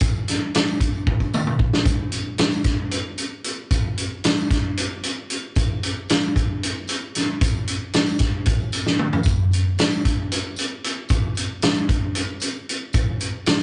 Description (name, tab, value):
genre	rock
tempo	227 BPM (eighths)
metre	7/8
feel	straight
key	none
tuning	none
part	vintage drum kit	drums	0.0-13.6 s	hi-hat, kick drum, snare drum, toms	-22 LUFS	equal	none
part	tambourine	percussion	0.0-13.6 s	none	-42 LUFS	equal	none
room	moderate small room reverb, RT60 0.5 s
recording	rough rehearsal-room recording, tube saturation, nothing above 10.3 kHz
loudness	-22 LUFS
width	mono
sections	0.0-13.6 A section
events	drum fill 1.1-1.9, 8.9-9.3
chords	none